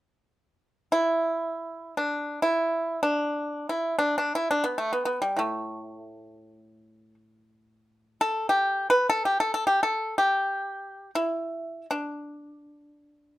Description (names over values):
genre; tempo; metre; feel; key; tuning
chinese traditional, Chinese solo plucked strings; free time; none; none; unclear; A4 = 440 Hz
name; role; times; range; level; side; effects
pipa; solo; 0.9-13.4 s; A2 to B4; -24 LUFS; equal; none
room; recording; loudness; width
light reverb; none; -24 LUFS; side -15 dB against mid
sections
0.1-13.4 A section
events
none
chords
none